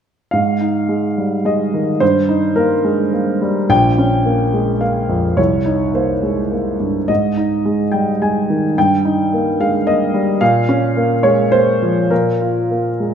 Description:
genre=classical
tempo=107 BPM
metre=3/4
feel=rubato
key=Bb dorian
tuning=A4 = 440 Hz
part: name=warm grand piano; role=accompaniment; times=0.3-13.1 s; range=Bb1 to Ab5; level=-14 LUFS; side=equal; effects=none
room=moderate concert hall reverb, RT60 2.3 s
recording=minimal, uncompressed stereo recording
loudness=-14 LUFS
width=side -8 dB against mid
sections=0.3-13.1 A section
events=none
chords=0.3 Ab5; 2.0 Eb/G; 3.7 Bbm; 5.4 Cm7; 7.1 Ab5; 8.8 Eb/G; 10.4 Bbmadd9; 12.1 Bb5

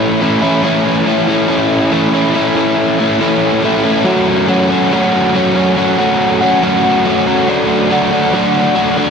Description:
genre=rock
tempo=70 BPM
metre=4/4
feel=straight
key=A major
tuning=A4 = 440 Hz
part: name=biting overdriven guitar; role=solo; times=0.0-9.1 s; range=A2 to F#4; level=-10 LUFS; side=equal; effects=analog delay
room=wet huge ambient reverb, RT60 7.0 s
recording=dreamy mix soaked in reverb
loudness=-10 LUFS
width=side -6 dB against mid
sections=0.0-9.1 A section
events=none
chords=0.0 A; 4.1 F#m; 7.5 D/F#

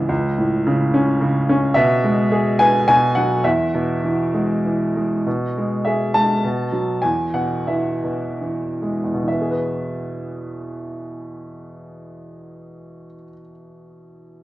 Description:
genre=classical, lyrical solo piano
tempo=65-109 BPM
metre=3/4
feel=rubato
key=E major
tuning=A4 = 440 Hz
part: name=clear baby grand piano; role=solo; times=0.0-14.4 s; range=C#2 to A5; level=-18 LUFS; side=equal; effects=none
room=moderate recital hall reverb, RT60 1.7 s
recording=worn, warbling old tape, cassette tape, warbly pitch drift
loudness=-17 LUFS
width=side -16 dB against mid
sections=0.0-5.3 A section; 5.3-9.3 B section; 9.3-14.4 C section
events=slowing down 5.3-9.3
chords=0.1 A/C#; 1.8 E/B; 2.9 B5; 3.4 E; 5.3 Eadd11/B; 6.4 B5; 7.0 E

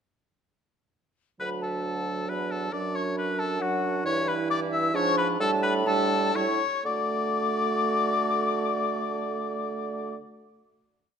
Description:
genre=quick classical-period movement for wind quintet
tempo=117-138 BPM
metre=3/4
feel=straight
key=D major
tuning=A4 = 438 Hz
part: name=mellow hollow silver concert flute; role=melody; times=1.4-10.2 s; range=F#5 to E6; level=-29 LUFS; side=left 6 dB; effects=none
part: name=clear oboe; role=second line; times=1.4-10.2 s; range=F#4 to E5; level=-31 LUFS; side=left 2 dB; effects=none
part: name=clear French horn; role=accompaniment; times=1.4-10.2 s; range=E3 to A3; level=-34 LUFS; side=right 2 dB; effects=none
part: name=warm clarinet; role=accompaniment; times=1.4-10.2 s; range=D4 to F#4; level=-33 LUFS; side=right 11 dB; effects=none
part: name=mellow bassoon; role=bass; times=1.4-10.2 s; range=D2 to D3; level=-31 LUFS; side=right 3 dB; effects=none
room=moderate recital hall reverb, RT60 1.5 s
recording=close, detailed microphones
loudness=-24 LUFS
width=side -7 dB against mid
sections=1.4-6.9 A section; 6.9-9.8 final chord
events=slowing down 3.4-6.9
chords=1.4 D; 2.7 D/F#; 4.0 Em/G; 4.9 G#dim7; 5.4 A7sus4; 6.4 A7; 6.9 D

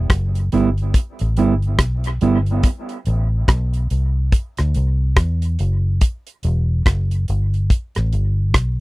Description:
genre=dub reggae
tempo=71 BPM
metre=4/4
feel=swing 60% on 16ths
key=E minor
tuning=A4 = 441 Hz
part: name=vintage muted fingered electric bass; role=bass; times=0.0-8.8 s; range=E1 to E2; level=-18 LUFS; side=equal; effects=none
part: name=damped 70s drum kit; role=drums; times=0.1-8.8 s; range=hi-hat, kick drum, rim click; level=-16 LUFS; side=equal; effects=none
part: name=mellow electric guitar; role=accompaniment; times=0.5-2.4 s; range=G3 to E4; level=-20 LUFS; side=right 5 dB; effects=dub echo
room=little or no reverb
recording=dry, close 1970s-style studio recording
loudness=-16 LUFS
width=side -20 dB against mid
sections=0.0-8.8 A section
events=none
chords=0.0 Em; 2.6 Am; 6.0 Em

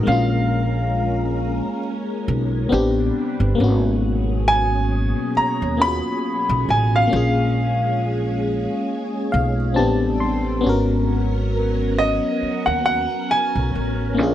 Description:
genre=R&B, neo-soul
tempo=68 BPM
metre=4/4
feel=swing 56% on 16ths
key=G# dorian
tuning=A4 = 440 Hz
part: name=FM electric piano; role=accompaniment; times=0.0-14.3 s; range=G#3 to C6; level=-23 LUFS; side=left 2 dB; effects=chorus, plate reverb
part: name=soft string machine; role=sustained chords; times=0.0-14.3 s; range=B2 to B4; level=-28 LUFS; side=right 1 dB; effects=phaser, ensemble chorus
part: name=warm concert grand piano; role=melody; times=0.1-14.3 s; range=D#5 to B5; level=-22 LUFS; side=equal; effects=plate reverb
part: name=upright bass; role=bass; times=0.1-14.3 s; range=G1 to D#2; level=-21 LUFS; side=equal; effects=none
room=moderate studio reverb, RT60 0.7 s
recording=dark, warm production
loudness=-18 LUFS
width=side -12 dB against mid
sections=0.0-14.3 A section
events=FM electric piano fill 8.9-10.6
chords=0.1 A#m7; 2.7 Am11; 3.6 G#m11; 7.1 A#m7; 9.8 Am11; 10.6 G#m11

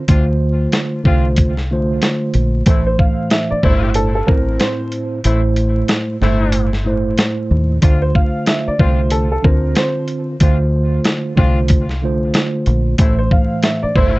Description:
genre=hip hop, boom-bap hip-hop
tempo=93 BPM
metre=4/4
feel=swing 61% on 16ths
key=D minor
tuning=A4 = 440 Hz
part: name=mellow tine electric piano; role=accompaniment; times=0.0-14.2 s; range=A2 to C5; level=-19 LUFS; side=right 1 dB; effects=medium stereo tremolo, high-pass filter, low-pass filter
part: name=clear horn section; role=stabs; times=0.1-14.2 s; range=A3 to F4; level=-27 LUFS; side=left 5 dB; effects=high-pass filter, low-pass filter, tape echo
part: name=deep dub fingered electric bass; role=bass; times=0.1-14.2 s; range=G1 to Eb2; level=-17 LUFS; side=equal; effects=none
part: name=dusty soul sampler-style drum kit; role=drums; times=0.1-14.1 s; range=hi-hat, kick drum, snare drum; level=-15 LUFS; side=equal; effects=none
part: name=warm upright piano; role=melody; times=2.9-14.2 s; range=A4 to F5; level=-21 LUFS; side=right 1 dB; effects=high-pass filter, low-pass filter, tape echo
room=light reverb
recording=dark, warm production, vinyl crackle, nothing above 8.0 kHz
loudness=-13 LUFS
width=side -20 dB against mid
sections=0.0-14.2 A section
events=kick muted 5.2-7.8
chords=0.0 Dm7; 2.7 Am; 7.8 Dm7; 13.0 Am

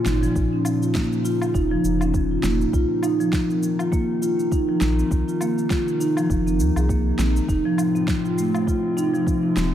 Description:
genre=organic downtempo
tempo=101 BPM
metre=4/4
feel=swing 57% on 16ths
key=unclear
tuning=A4 = 436 Hz
part: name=warbly tape-like pad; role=sustained chords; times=0.0-9.7 s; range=A2 to F4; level=-27 LUFS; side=right 2 dB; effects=chorus, built-in reverb, sidechain pumping
part: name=marimba with soft mallets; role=arpeggios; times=0.1-9.6 s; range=F3 to Ab4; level=-22 LUFS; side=left 1 dB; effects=analog delay
part: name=warm sub bass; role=bass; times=0.1-9.7 s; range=Eb1 to Eb2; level=-23 LUFS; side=equal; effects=sidechain pumping
part: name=electronic snare drum, shaker and woodblock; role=drums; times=0.1-9.7 s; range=none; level=-31 LUFS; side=equal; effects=overdrive
part: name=electronic kick drum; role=drums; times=0.4-9.4 s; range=none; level=-24 LUFS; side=equal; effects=none
room=light reverb, digital ambience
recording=none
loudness=-19 LUFS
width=side -10 dB against mid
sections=0.0-9.7 A section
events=none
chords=0.0 Bbm; 2.7 Cm; 7.5 F

